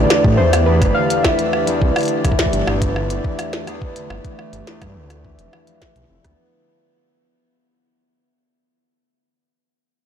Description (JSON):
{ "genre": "IDM", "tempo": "105 BPM", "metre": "4/4", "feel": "straight", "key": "unclear", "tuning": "A4 = 439 Hz", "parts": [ { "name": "warbly lo-fi synth keys", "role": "melody", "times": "0.0-1.8 s", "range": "B4 to F5", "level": "-22 LUFS", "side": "equal", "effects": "chorus, vintage 12-bit sampler grit, digital delay" }, { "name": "hollow soft pad", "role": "sustained chords", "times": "0.0-6.4 s", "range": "A3 to D5", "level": "-24 LUFS", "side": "right 1 dB", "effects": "chorus" }, { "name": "concert harp", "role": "arpeggios", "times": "0.0-9.3 s", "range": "E2 to E4", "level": "-22 LUFS", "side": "left 2 dB", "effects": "low-pass filter, digital delay" }, { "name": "dark detuned saw bass", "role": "bass", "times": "0.0-6.3 s", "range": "F1 to A2", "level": "-18 LUFS", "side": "equal", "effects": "none" }, { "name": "glitchy drum kit", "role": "drums", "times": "0.1-6.4 s", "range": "hi-hat, rim click, snare drum", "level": "-22 LUFS", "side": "equal", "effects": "overdrive, soft clipping on snare, tape echo" }, { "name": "electronic kick drum", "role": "drums", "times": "0.2-6.4 s", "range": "none", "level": "-19 LUFS", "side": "equal", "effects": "overdrive" } ], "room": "light reverb, digital ambience", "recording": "blown-out, overdriven recording, overdrive", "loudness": "-15 LUFS", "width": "side -8 dB against mid", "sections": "0.0-6.4 A section", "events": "fade-out 0.0-6.4", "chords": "0.0 A5; 1.8 Csus2; 4.1 G7" }